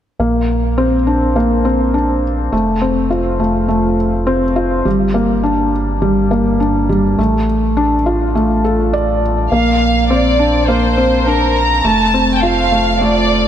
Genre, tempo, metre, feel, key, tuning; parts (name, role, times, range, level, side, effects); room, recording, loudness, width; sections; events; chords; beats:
piano and strings electronica; 103 BPM; 4/4; straight; Bb major; A4 = 440 Hz
felt-muted upright piano; riff; 0.2-13.5 s; G3 to D5; -14 LUFS; left 1 dB; low-pass filter, digital delay
round analog bass; bass; 0.2-13.5 s; F1 to Bb1; -19 LUFS; right 1 dB
rich studio violin section; melody; 9.5-13.5 s; Bb4 to Bb5; -14 LUFS; equal; digital delay
moderate lush hall reverb, RT60 2.7 s; -12 LUFS; side -10 dB against mid
0.2-13.5 A section
0.2 Bbadd9; 2.5 F; 4.9 Gm; 7.2 Dm/A; 9.5 Bbadd9; 11.8 F
| 0.20 0.78 1.36 1.94 | 2.52 3.11 3.69 4.27 | 4.86 5.44 6.02 6.60 | 7.18 7.77 8.35 8.93 | 9.52 10.10 10.68 11.26 | 11.85 12.43 13.01